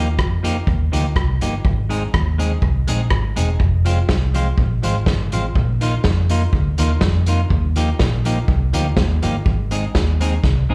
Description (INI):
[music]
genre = ska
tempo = 123 BPM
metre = 4/4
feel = straight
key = unclear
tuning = A4 = 440 Hz
[part]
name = clean electric guitar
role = accompaniment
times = 0.0-10.7 s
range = Eb3 to Ab4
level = -27 LUFS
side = equal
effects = slapback echo
[part]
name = vintage muted fingered electric bass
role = bass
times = 0.0-10.7 s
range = E1 to F2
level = -21 LUFS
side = equal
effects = none
[part]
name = vintage drum kit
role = drums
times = 0.2-10.6 s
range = hi-hat, kick drum, rim click, snare drum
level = -23 LUFS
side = equal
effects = none
[sound]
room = light reverb, studio reverb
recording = live gig heard through the venue's PA, club reverb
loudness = -18 LUFS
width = mono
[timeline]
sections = 0.0-10.7 A section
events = drum fill 10.4-10.7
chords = 0.0 Ebadd9; 1.6 Ab; 3.6 Fm; 5.6 Bbsus4; 7.5 Ebadd9; 9.5 Ab